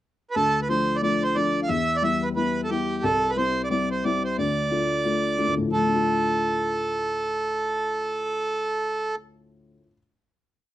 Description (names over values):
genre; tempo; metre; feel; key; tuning
celtic folk, Celtic hornpipe; 179 BPM; 4/4; swing 60% on 8ths; D dorian; A4 = 436 Hz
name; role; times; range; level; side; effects
accordion; melody; 0.3-9.2 s; G4 to F5; -24 LUFS; right 2 dB; none
dark upright piano; accompaniment; 0.4-10.0 s; C2 to F4; -26 LUFS; left 3 dB; none
room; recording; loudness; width
light reverb; dry, close 1970s-style studio recording; -22 LUFS; side -14 dB against mid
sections
0.0-0.4 pickup bar; 0.4-5.7 A section; 5.7-8.4 final chord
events
none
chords
0.4 Dm; 1.7 Em; 3.0 C; 4.4 Dm